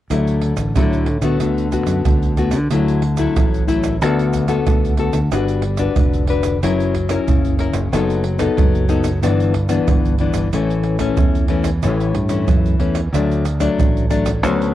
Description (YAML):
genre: samba and choro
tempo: 92 BPM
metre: 4/4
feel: straight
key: D major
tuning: A4 = 439 Hz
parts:
  - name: nylon-string guitar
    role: accompaniment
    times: 0.1-14.7 s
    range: G2 to B4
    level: -19 LUFS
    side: left 4 dB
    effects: cassette tape
  - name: fingered electric bass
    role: bass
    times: 0.1-14.7 s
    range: F1 to D3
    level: -20 LUFS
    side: right 1 dB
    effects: none
  - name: egg shaker, surdo and pandeiro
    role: percussion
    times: 0.1-14.7 s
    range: none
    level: -19 LUFS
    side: right 2 dB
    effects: none
room: moderate spring reverb, RT60 1.7 s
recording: home recording on cassette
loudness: -15 LUFS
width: side -13 dB against mid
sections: 0.1-2.7 A section; 2.7-14.7 B section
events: none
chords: 0.1 Dadd9; 1.4 Bm7/D; 2.7 Dadd9; 4.0 Bm7/D; 5.3 Gmaj7; 6.6 F#7; 7.9 B7/F#; 9.2 Em7/G; 10.5 A; 13.1 D